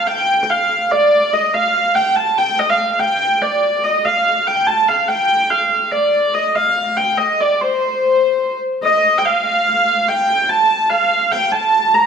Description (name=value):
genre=medieval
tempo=144 BPM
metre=3/4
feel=straight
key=unclear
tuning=A4 = 439 Hz
part: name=dark hurdy-gurdy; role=solo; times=0.0-12.1 s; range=C5 to Bb5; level=-13 LUFS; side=equal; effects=none
room=wet recital hall reverb, RT60 1.5 s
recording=none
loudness=-13 LUFS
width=side -6 dB against mid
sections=0.0-8.8 A section; 8.8-12.1 A section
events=none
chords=none